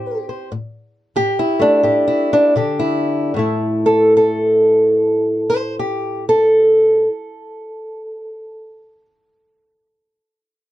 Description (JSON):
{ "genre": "acoustic country blues, solo or duo", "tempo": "75-98 BPM", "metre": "4/4", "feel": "swing 63% on 8ths", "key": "A minor", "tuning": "A4 = 440 Hz", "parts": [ { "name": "fingerpicked old ladder-braced acoustic guitar", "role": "solo", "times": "0.0-8.5 s", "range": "A2 to C5", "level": "-14 LUFS", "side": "equal", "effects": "none" } ], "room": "light reverb", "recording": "dark, warm production", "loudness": "-13 LUFS", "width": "side -14 dB against mid", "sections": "0.0-3.3 A section; 3.3-6.5 B section", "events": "slowing down 0.0-3.3; stop 0.0-2.5", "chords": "0.0 Am7; 2.5 Bb; 3.3 A5" }